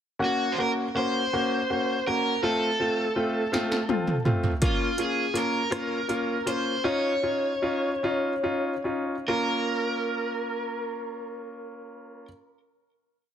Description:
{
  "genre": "six-eight pop ballad",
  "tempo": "47-55 BPM (dotted quarters)",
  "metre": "6/8",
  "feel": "straight",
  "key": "Bb minor",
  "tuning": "A4 = 440 Hz",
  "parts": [
    { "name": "lead guitar through a small cranked amp", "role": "melody", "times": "0.2-12.3 s", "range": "F4 to Db5", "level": "-28 LUFS", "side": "right 1 dB", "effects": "overdrive, digital delay" },
    { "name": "clear baby grand piano", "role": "accompaniment", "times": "0.2-12.3 s", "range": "A3 to Gb4", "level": "-28 LUFS", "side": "left 1 dB", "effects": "none" },
    { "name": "80s electronic pad drums", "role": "drums", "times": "3.5-6.7 s", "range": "hi-hat, kick drum, rim click, snare drum, toms", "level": "-26 LUFS", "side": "equal", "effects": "gated reverb on snare and toms" }
  ],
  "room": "light reverb",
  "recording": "none",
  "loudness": "-24 LUFS",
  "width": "side -9 dB against mid",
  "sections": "0.2-9.3 verse; 9.3-11.8 final chord",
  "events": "drum fill 3.5-4.6; slowing down 4.6-9.3",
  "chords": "0.2 Gb; 2.4 F; 4.6 Bbm; 6.9 Dbadd9; 9.3 Bbm"
}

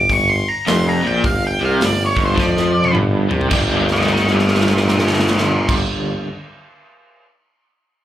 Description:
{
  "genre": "blues rock power trio and southern rock",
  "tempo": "106 BPM",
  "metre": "4/4",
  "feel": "swing 63% on 8ths",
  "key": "G minor",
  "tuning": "A4 = 443 Hz",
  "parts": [
    { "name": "octave-fuzz lead guitar", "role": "melody", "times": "0.0-5.8 s", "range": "Bb4 to D6", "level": "-19 LUFS", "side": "equal", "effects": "distortion" },
    { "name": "crunchy overdriven guitar", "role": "riff", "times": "0.0-6.3 s", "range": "F2 to G4", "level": "-20 LUFS", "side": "equal", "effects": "tremolo, slapback echo" },
    { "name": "warm tuba", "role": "bass", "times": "0.0-5.7 s", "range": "F1 to F2", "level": "-20 LUFS", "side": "equal", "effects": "none" },
    { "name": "big rock drum kit", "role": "drums", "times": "0.1-7.2 s", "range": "crash cymbal, hi-hat, kick drum, snare drum, toms", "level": "-21 LUFS", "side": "equal", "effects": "none" }
  ],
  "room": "moderate club reverb, RT60 0.5 s",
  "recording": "live gig heard through the venue's PA, club reverb",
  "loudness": "-14 LUFS",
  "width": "side -12 dB against mid",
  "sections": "0.0-3.5 A section; 3.5-5.8 B section",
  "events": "drum fill 2.4-3.5, 3.8-5.6",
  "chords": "0.0 G5; 3.5 Gm7"
}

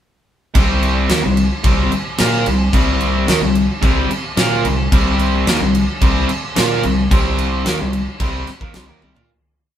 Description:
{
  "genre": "hard rock",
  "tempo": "110 BPM",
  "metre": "4/4",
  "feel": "straight",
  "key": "C minor",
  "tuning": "A4 = 440 Hz",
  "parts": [
    { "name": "overdriven electric guitar", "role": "riff", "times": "0.5-9.3 s", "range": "C3 to Bb4", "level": "-20 LUFS", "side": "right 4 dB", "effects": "none" },
    { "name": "huge arena drum kit", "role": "drums", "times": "0.5-9.3 s", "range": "crash cymbal, kick drum, snare drum, toms", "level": "-18 LUFS", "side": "equal", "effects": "none" },
    { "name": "overdriven semi-hollow guitar", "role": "riff", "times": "0.6-9.3 s", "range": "C3 to Bb4", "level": "-20 LUFS", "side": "left 5 dB", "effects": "spring reverb" },
    { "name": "modern bright fingered electric bass", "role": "bass", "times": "0.6-9.3 s", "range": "C2 to Bb2", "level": "-21 LUFS", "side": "equal", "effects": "none" }
  ],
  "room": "wet small room reverb, RT60 0.5 s",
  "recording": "band playing live in one room",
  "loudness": "-14 LUFS",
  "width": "side -10 dB against mid",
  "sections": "0.5-9.3 riff",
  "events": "fade-out 7.1-9.3; drum fill 9.0",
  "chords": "0.5 Cm"
}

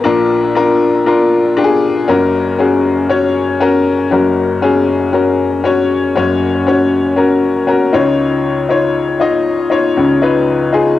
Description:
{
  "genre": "pop",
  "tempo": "118 BPM",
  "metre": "4/4",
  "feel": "straight",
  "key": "F# major",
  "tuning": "A4 = 440 Hz",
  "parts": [
    { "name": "clear upright piano", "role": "solo", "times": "0.0-11.0 s", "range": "F#1 to D#5", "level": "-11 LUFS", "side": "left 3 dB", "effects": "tape echo" }
  ],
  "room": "wet studio reverb, RT60 0.5 s",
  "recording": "home recording on cassette",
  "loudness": "-11 LUFS",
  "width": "side -13 dB against mid",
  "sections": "0.0-4.1 A section; 4.1-11.0 B section",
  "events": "none",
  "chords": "0.1 A#; 2.1 F#; 7.9 C#add9"
}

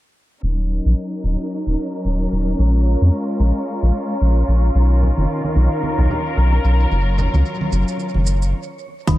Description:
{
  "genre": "organic downtempo",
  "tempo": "111 BPM",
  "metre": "4/4",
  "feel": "swing 58% on 16ths",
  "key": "Eb minor",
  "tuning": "A4 = 440 Hz",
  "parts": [
    { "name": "warm studio string section", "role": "sustained chords", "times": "0.4-9.2 s", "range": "D#3 to Bb4", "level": "-23 LUFS", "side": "left 1 dB", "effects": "sidechain pumping" },
    { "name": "round analog bass", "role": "bass", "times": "0.4-9.2 s", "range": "Eb1 to F2", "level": "-15 LUFS", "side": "equal", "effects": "sidechain pumping" },
    { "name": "electronic shaker and hi-hat", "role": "drums", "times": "0.4-9.2 s", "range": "none", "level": "-35 LUFS", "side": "right 5 dB", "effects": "overdrive, tape echo" },
    { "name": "wind-like tuned noise texture", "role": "texture", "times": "1.3-8.5 s", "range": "Db5", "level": "-31 LUFS", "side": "right 2 dB", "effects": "built-in reverb" },
    { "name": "congas", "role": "percussion", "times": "5.0-8.2 s", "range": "none", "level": "-26 LUFS", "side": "right 3 dB", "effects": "tape echo" },
    { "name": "kalimba", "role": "arpeggios", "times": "9.1-9.2 s", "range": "Eb3", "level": "-16 LUFS", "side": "right 1 dB", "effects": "none" },
    { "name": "electronic kick drum", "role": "drums", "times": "9.1-9.2 s", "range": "none", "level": "-17 LUFS", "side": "equal", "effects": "overdrive" }
  ],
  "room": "light reverb, digital ambience",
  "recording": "echo-heavy mix, low-pass filter",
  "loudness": "-16 LUFS",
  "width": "side -16 dB against mid",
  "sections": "0.4-9.1 A section",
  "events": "filter sweep on analog synth bass 0.4-9.1; filter sweep 0.4-9.1; stop 8.5-9.1",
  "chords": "0.4 Ebm7; 2.6 Bbm7; 4.8 Bmaj9#11; 6.9 Gbmaj7"
}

